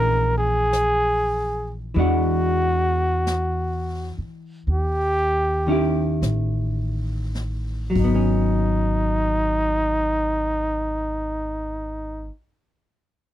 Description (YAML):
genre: jazz ballad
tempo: 32-51 BPM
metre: 4/4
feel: swing 66% on 8ths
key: G# minor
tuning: A4 = 439 Hz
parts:
  - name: breathy trumpet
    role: melody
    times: 0.0-12.3 s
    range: D#4 to A#4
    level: -23 LUFS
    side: equal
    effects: none
  - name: hollow-body jazz guitar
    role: accompaniment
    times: 0.0-12.5 s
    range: D#3 to G4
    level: -25 LUFS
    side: left 2 dB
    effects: none
  - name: upright bass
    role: bass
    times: 0.0-12.3 s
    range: G#1 to E2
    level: -25 LUFS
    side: equal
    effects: none
  - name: jazz brush drum kit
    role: drums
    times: 0.7-8.8 s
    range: brushed snare drum, hi-hat, kick drum, snare drum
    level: -35 LUFS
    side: equal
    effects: none
room: little or no reverb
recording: dry, close 1970s-style studio recording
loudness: -20 LUFS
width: side -12 dB against mid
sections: 0.0-8.0 A section; 8.0-13.3 B section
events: slowing down 0.0-8.0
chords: 0.0 A#m7b5; 2.0 E9; 4.7 D#7b9; 8.0 G#m7